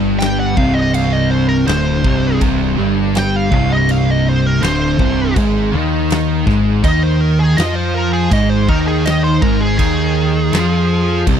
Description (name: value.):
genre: stoner and doom metal.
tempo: 81 BPM.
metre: 4/4.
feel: straight.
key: unclear.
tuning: A4 = 440 Hz.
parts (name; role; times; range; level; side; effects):
distorted electric guitar; riff; 0.0-11.4 s; C2 to F4; -22 LUFS; equal; distortion.
thick fuzz guitar; riff; 0.0-11.4 s; C2 to F4; -19 LUFS; left 9 dB; distortion.
thick fuzz guitar; riff; 0.0-11.4 s; C2 to F4; -18 LUFS; right 9 dB; distortion.
growling picked electric bass; bass; 0.0-11.4 s; C1 to F2; -19 LUFS; equal; overdrive.
fuzz lead guitar; melody; 0.2-11.2 s; Ab4 to G5; -20 LUFS; equal; wah, distortion, tape echo.
big rock drum kit; drums; 0.2-11.4 s; crash cymbal, kick drum, snare drum; -20 LUFS; equal; none.
room: little or no reverb.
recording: dry, close 1970s-style studio recording.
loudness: -12 LUFS.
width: side -8 dB against mid.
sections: 0.0-11.4 A section.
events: lead electric guitar solo 0.0-11.4.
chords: 0.0 C5; 5.4 Ab5.